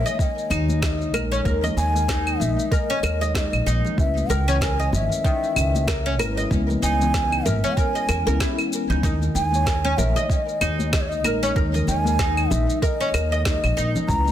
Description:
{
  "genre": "organic downtempo",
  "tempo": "95 BPM",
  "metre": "4/4",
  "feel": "swing 57% on 16ths",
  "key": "unclear",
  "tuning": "A4 = 438 Hz",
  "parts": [
    { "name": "mellow bansuri", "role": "melody", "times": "0.0-14.3 s", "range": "Db5 to Bb5", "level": "-27 LUFS", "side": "equal", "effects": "ping-pong delay" },
    { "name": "muted felt-like synth keys", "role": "accompaniment", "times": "0.0-14.3 s", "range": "Eb3 to Db5", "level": "-29 LUFS", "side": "left 3 dB", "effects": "chorus, sidechain pumping, digital delay" },
    { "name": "oud", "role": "arpeggios", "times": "0.0-14.1 s", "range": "Eb3 to Eb5", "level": "-27 LUFS", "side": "equal", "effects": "digital delay" },
    { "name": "electronic shaker, claves and snare drum", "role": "drums", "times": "0.1-14.3 s", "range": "none", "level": "-28 LUFS", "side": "left 1 dB", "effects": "overdrive" },
    { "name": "electronic kick drum", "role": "drums", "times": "0.2-14.2 s", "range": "none", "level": "-23 LUFS", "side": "equal", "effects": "none" },
    { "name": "upright bass", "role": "bass", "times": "0.5-14.3 s", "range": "Ab1 to Fb2", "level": "-23 LUFS", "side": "equal", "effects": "sidechain pumping" },
    { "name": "congas", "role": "percussion", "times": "0.5-14.3 s", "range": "none", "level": "-32 LUFS", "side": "left 1 dB", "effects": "none" }
  ],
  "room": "light reverb, small room ambience",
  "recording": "dense, heavily limited modern master",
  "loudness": "-19 LUFS",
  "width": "side -11 dB against mid",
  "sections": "0.0-14.3 A section",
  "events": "none",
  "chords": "0.0 Ebsus4; 4.0 Dbm7; 9.0 Ebsus4",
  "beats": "0.19 0.82 | 1.46 2.09 2.72 3.35 | 3.98 4.61 5.25 5.88 | 6.51 7.14 7.77 8.40 | 9.03 9.67 10.30 10.93 | 11.56 12.19 12.82 13.46 | 14.09"
}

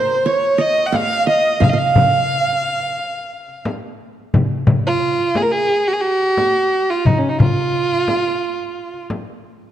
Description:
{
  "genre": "Arabic maqam ensemble",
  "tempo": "88 BPM",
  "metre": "4/4",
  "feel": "straight",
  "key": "F maqam bayati",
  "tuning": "A4 = 440 Hz",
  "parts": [
    { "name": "rich violin", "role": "melody", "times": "0.0-9.1 s", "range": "Db4 to Gb5+39c", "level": "-17 LUFS", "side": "right 1 dB", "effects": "none" },
    { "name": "qanun", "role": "second line", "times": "0.0-3.6 s", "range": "Bb4 to F5", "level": "-20 LUFS", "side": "right 5 dB", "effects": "none" },
    { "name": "darbuka", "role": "percussion", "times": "0.8-9.4 s", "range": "none", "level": "-22 LUFS", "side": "left 2 dB", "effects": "none" },
    { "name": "frame drum", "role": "percussion", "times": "0.9-9.3 s", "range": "none", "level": "-19 LUFS", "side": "left 1 dB", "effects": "none" }
  ],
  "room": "moderate concert hall reverb, RT60 2.1 s",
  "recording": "dark, warm production",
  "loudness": "-15 LUFS",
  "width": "side -11 dB against mid",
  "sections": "0.0-4.3 A section; 4.3-9.7 B section",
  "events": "none",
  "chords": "none",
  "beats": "0.27 0.94 | 1.62 2.30 2.98 3.66 | 4.34 5.02 5.70 6.38 | 7.07 7.75 8.43 9.11"
}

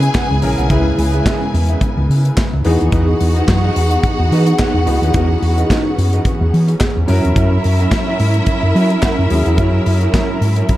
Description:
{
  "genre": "disco",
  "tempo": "108 BPM",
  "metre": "4/4",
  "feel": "swing 56% on 16ths",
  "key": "unclear",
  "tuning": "A4 = 439 Hz",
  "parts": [
    { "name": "clear symphonic string section", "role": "second line", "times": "0.0-10.8 s", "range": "E4 to G#5", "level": "-23 LUFS", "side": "equal", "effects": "none" },
    { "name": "clear concert grand piano", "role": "accompaniment", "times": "0.0-10.8 s", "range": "C#3 to B4", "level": "-22 LUFS", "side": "left 2 dB", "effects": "none" },
    { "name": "mellow electric guitar", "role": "accompaniment", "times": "0.0-10.7 s", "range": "C#4 to F#5", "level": "-24 LUFS", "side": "right 2 dB", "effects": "lush chorus" },
    { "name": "dark studio string section", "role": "sustained chords", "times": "0.0-10.8 s", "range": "C#3 to A#4", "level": "-22 LUFS", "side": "right 1 dB", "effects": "none" },
    { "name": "hollow-body short-scale fingered electric bass", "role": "bass", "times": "0.0-10.6 s", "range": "A#1 to F#3", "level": "-14 LUFS", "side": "equal", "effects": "none" },
    { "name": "modern studio drum kit", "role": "drums", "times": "0.0-10.8 s", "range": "handclaps, hi-hat, kick drum, snare drum", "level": "-19 LUFS", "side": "equal", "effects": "none" }
  ],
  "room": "light reverb, studio reverb",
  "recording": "dark, warm production",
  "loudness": "-12 LUFS",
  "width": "side -15 dB against mid",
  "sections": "0.0-10.8 A section",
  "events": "none",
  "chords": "0.0 C#m7; 2.6 Emaj7; 7.1 F#7",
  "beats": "0.15 | 0.71 1.26 1.82 2.37 | 2.92 3.48 4.04 4.59 | 5.14 5.70 6.25 6.81 | 7.36 7.92 8.47 9.03 | 9.58 10.14 10.69"
}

